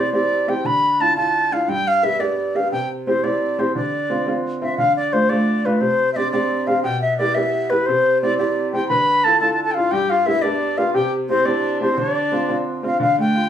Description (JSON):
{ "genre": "celtic folk, Celtic jig", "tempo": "117 BPM (dotted quarters)", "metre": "6/8", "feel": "straight", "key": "D dorian", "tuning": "A4 = 439 Hz", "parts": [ { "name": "wooden flute", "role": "melody", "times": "0.0-13.5 s", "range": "B4 to B5", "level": "-18 LUFS", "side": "equal", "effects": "none" }, { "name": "bright upright piano", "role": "accompaniment", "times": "0.0-13.5 s", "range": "G2 to G4", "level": "-22 LUFS", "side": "right 1 dB", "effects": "none" }, { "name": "mellow soprano saxophone", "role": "second line", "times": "8.9-12.8 s", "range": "C4 to B4", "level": "-24 LUFS", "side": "left 4 dB", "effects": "none" } ], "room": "wet studio reverb, RT60 0.5 s", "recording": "heard from further back in the room, small room ambience", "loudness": "-17 LUFS", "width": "side -9 dB against mid", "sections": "0.0-4.8 A section; 4.8-13.0 A section", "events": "none", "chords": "0.0 C; 0.7 Dmadd9; 1.7 G; 2.7 C; 3.7 Dm7; 4.8 Dm; 5.8 Csus2; 6.8 Em/B; 7.9 C; 8.9 Dmadd9; 9.9 G; 11.0 C; 12.0 Dm7", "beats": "0.14 | 0.65 1.17 | 1.69 2.20 | 2.72 3.23 | 3.75 4.26 | 4.78 5.29 | 5.81 6.33 | 6.84 7.35 | 7.87 8.38 | 8.90 9.41 | 9.92 10.44 | 10.95 11.47 | 11.98 12.49 | 13.01" }